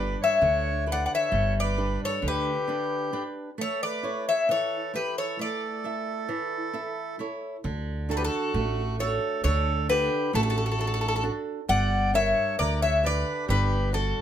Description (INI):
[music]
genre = greek folk, Greek bouzouki band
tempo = 133 BPM (eighths)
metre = 9/8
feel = straight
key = D major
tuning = A4 = 441 Hz
[part]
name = Greek bouzouki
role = melody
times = 0.0-14.2 s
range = A4 to F#5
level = -26 LUFS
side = left 3 dB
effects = none
[part]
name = accordion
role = second line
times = 0.0-14.2 s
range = F#4 to D5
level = -32 LUFS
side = right 3 dB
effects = none
[part]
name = flamenco guitar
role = accompaniment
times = 0.0-14.2 s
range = D3 to F#5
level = -32 LUFS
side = right 3 dB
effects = none
[part]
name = upright bass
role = bass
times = 0.0-14.1 s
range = G1 to D2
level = -28 LUFS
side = right 1 dB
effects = none
[sound]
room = wet studio reverb, RT60 0.5 s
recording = none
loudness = -24 LUFS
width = side -10 dB against mid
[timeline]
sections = 0.0-7.6 A section; 7.6-14.2 B section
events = break 3.6-7.6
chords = 0.0 G; 3.6 A; 7.6 D; 11.7 Gm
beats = 0.42 0.87 1.32 1.78 2.23 2.68 3.13 | 3.58 4.04 4.49 4.94 5.39 5.84 6.29 6.74 7.19 | 7.64 8.09 8.54 8.99 9.44 9.89 10.34 10.79 11.24 | 11.69 12.14 12.59 13.04 13.48 13.93